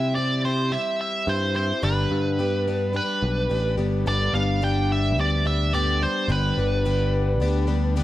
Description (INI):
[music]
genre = folk rock and heartland rock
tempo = 108 BPM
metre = 4/4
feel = straight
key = unclear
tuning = A4 = 440 Hz
[part]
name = nasal lead guitar with a parked wah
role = melody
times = 0.0-7.9 s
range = B4 to G5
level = -25 LUFS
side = right 1 dB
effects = overdrive, analog delay
[part]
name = picked plugged-in twelve-string acoustic guitar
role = accompaniment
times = 0.0-8.0 s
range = G2 to G4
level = -27 LUFS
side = left 3 dB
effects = none
[part]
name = picked electric bass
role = bass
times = 0.0-8.0 s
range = G1 to C3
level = -24 LUFS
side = equal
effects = none
[sound]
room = light reverb, studio reverb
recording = none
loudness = -21 LUFS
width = side -14 dB against mid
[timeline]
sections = 0.0-4.1 A section; 4.1-8.0 B section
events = none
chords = 0.0 C; 1.8 G